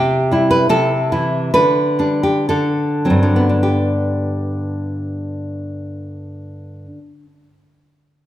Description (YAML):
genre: romantic piece for solo classical guitar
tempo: 52-78 BPM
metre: 2/4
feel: rubato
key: G major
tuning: A4 = 440 Hz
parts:
  - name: nylon-string guitar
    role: solo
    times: 0.0-7.4 s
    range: G2 to B4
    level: -15 LUFS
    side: equal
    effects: none
room: moderate recital hall reverb, RT60 1.6 s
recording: minimal, uncompressed stereo recording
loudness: -15 LUFS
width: side -13 dB against mid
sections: 0.0-3.6 A section; 3.6-7.9 B section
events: slowing down 0.0-3.6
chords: 0.0 C; 0.7 Am/C; 1.5 G/D; 2.5 D7; 3.6 G